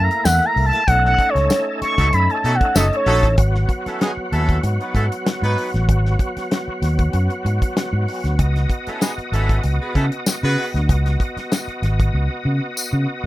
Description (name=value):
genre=funk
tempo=96 BPM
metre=4/4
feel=straight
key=unclear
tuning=A4 = 439 Hz
part: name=expressive synth lead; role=melody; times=0.0-3.4 s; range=C#5 to C#6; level=-18 LUFS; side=equal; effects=chorus
part: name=overdriven tonewheel organ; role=sustained chords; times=0.0-13.3 s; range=F#3 to D#5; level=-26 LUFS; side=equal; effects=slow rotary speaker, chorus vibrato
part: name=fingered electric bass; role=bass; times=0.0-13.3 s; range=F#1 to C#3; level=-18 LUFS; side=equal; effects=none
part: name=damped 70s drum kit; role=drums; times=0.1-12.1 s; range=hi-hat, kick drum, snare drum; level=-21 LUFS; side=equal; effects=none
part: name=tambourine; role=percussion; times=0.3-2.9, 9.0-12.9 s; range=none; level=-26 LUFS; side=left 3 dB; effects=none
part: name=clear horn section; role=second line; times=2.0-10.7 s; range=G#3 to B4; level=-23 LUFS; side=right 1 dB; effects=none
room=little or no reverb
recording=rough home demo mix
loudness=-16 LUFS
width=side -16 dB against mid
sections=0.0-3.4 A section; 3.4-13.3 B section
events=analog synth lead solo 0.0-3.4; band accent 0.9-3.4; drum fill 12.1-13.3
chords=0.0 F#7#9; 0.9 B9; 3.4 G#m7; 8.4 C#9sus4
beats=0.25 | 0.88 1.50 2.13 2.76 | 3.38 4.01 4.63 5.26 | 5.89 6.51 7.14 7.76 | 8.39 9.02 9.64 10.27 | 10.89 11.52 12.14 12.77